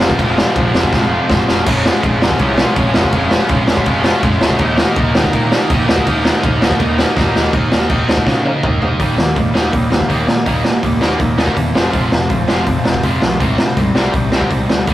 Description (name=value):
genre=punk rock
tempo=163 BPM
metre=4/4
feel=straight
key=unclear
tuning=A4 = 439 Hz
part: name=cranked stack guitar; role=riff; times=0.0-14.9 s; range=C3 to G4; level=-22 LUFS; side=equal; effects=overdrive
part: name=distorted electric guitar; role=riff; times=0.0-14.9 s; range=F2 to Eb4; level=-18 LUFS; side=right 1 dB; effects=distortion
part: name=fuzz picked electric bass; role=bass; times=0.0-14.9 s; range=F1 to Db3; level=-21 LUFS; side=equal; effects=overdrive
part: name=raw garage drum kit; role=drums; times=0.0-14.9 s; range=crash cymbal, hi-hat, kick drum, ride cymbal, snare drum, toms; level=-14 LUFS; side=equal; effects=none
room=light reverb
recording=rough rehearsal-room recording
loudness=-12 LUFS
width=side -14 dB against mid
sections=0.0-7.5 A section; 7.5-9.0 B section; 9.0-14.9 C section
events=drum fill 0.9-1.7, 7.2-7.5, 8.3-9.0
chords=0.0 Fm; 1.5 Db/F; 4.6 Eb; 7.5 Eb5; 9.0 Eb; 11.8 Fm; 13.4 Cm